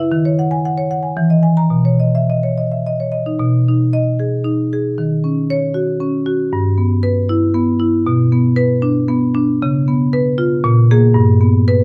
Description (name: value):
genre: classical, contemporary piece for solo marimba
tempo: 115 BPM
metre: 3/4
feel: rubato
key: B major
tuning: A4 = 440 Hz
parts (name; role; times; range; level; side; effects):
- marimba with medium hard mallets; solo; 0.0-11.8 s; G2 to A#5; -15 LUFS; equal; none
room: light reverb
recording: dark, warm production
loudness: -15 LUFS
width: mono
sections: 0.0-3.4 A section; 3.4-11.8 B section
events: none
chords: 0.1 D#m7; 1.2 Emaj7; 1.7 Badd9; 3.4 B6; 5.0 D#m7; 6.5 G6; 8.1 Bm; 9.6 C#7; 10.6 G#sus2/A#; 11.2 G